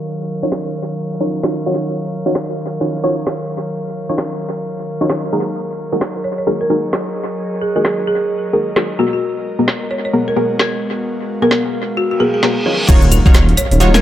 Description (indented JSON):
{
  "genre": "UK garage, two-step garage",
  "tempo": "131 BPM",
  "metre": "4/4",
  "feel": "swing 62% on 16ths",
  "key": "Eb minor",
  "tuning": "A4 = 436 Hz",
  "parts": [
    { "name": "airy breathy pad", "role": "sustained chords", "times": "0.0-14.0 s", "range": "Eb3 to F5", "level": "-23 LUFS", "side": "equal", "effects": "chorus, sidechain pumping" },
    { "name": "punchy chord stab", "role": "stabs", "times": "0.0-14.0 s", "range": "Cb4 to Db5", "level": "-18 LUFS", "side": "equal", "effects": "chorus, analog delay" },
    { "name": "garage drum kit", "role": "drums", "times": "0.5-14.0 s", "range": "claves, crash cymbal, hi-hat, snare drum", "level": "-21 LUFS", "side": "equal", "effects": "overdrive, low-pass filter on hats, low-pass filter on perc, low-pass filter on snare, low-pass filter on cymbals, analog delay" },
    { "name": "folk marimba with hard mallets", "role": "melody", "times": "6.2-14.0 s", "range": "Gb4 to Db5", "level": "-20 LUFS", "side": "equal", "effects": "analog delay" },
    { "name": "reverse cymbal and impact", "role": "sound effects", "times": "12.2-14.0 s", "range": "none", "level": "-19 LUFS", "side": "equal", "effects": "none" },
    { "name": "dark detuned saw bass", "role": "bass", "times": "12.9-14.0 s", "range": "Eb1", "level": "-13 LUFS", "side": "equal", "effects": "sidechain pumping" },
    { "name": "electronic kick drum", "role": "drums", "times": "12.9-13.3 s", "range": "none", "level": "-9 LUFS", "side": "equal", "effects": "overdrive" },
    { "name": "cabasa", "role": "percussion", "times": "12.9-14.0 s", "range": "none", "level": "-25 LUFS", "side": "left 3 dB", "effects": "none" }
  ],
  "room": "moderate spring reverb, RT60 2.0 s, digital ambience",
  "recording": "echo-heavy mix, low-pass filter",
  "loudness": "-15 LUFS",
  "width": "side -12 dB against mid",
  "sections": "0.0-12.9 A section; 12.9-14.0 B section",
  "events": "filter sweep 0.0-12.9; reverse cymbal 12.2-12.9; drop 12.9-14.0; impact 12.9-14.0",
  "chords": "0.0 Ebm9; 5.6 Gb69; 9.0 Abm9; 12.9 Ebm9"
}